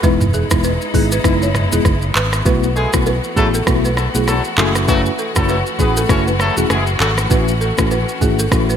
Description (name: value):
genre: afrobeats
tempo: 99 BPM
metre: 4/4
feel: swing 58% on 16ths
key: B mixolydian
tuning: A4 = 445 Hz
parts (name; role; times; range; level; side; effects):
- mellow tine electric piano; accompaniment; 0.0-8.7 s; G#3 to F#4; -20 LUFS; left 2 dB; medium stereo tremolo
- warm studio string section; sustained chords; 0.0-8.8 s; E3 to F#4; -24 LUFS; left 2 dB; none
- balafon; riff; 0.0-8.8 s; G#4 to C#5; -23 LUFS; right 4 dB; ping-pong delay
- fingered electric bass; bass; 0.0-8.8 s; E1 to B1; -19 LUFS; equal; none
- afro-pop drum kit; drums; 0.0-8.8 s; handclaps, hi-hat, kick drum, rim click, shaker, toms; -18 LUFS; equal; gated reverb
- congas and bongos; percussion; 2.5-8.7 s; none; -28 LUFS; left 4 dB; none
- clear horn section; second line; 2.8-7.1 s; C#3 to C#5; -22 LUFS; left 2 dB; ping-pong delay
room: light reverb, small room ambience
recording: bright 1980s-style digital production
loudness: -13 LUFS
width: side -8 dB against mid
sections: 0.0-8.8 A section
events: none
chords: 0.0 Emaj7; 2.5 B7sus4; 4.6 F#m7; 7.3 A6